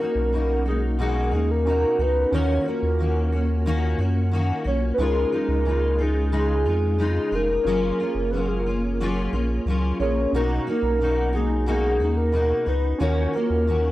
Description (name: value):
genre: indie pop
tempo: 90 BPM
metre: 4/4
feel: straight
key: unclear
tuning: A4 = 441 Hz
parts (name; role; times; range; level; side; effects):
- soft octave-layered synth lead; melody; 0.0-13.9 s; G#4 to C#5; -25 LUFS; equal; phaser, wide subtle chorus
- fingerpicked steel-string acoustic guitar; accompaniment; 0.0-13.9 s; B2 to F#4; -27 LUFS; left 2 dB; ensemble chorus, warbly pitch drift
- warbly lo-fi synth keys; accompaniment; 0.0-13.9 s; C#4 to A#5; -30 LUFS; right 3 dB; chorus, cassette tape, plate reverb
- round analog bass; bass; 0.2-13.9 s; E#1 to F#2; -24 LUFS; equal; none
room: moderate studio reverb, RT60 0.6 s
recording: dry, gritty hardware recording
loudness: -20 LUFS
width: side -16 dB against mid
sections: 0.0-13.9 A section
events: none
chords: 0.0 Bmaj7; 2.3 D#m7; 5.0 C#add9; 7.7 F#maj7; 10.3 Bmaj7; 13.0 D#m7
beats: 0.32 0.99 1.65 | 2.32 2.99 3.66 4.32 | 4.99 5.66 6.33 6.99 | 7.66 8.33 9.00 9.66 | 10.33 11.00 11.67 12.34 | 13.00 13.67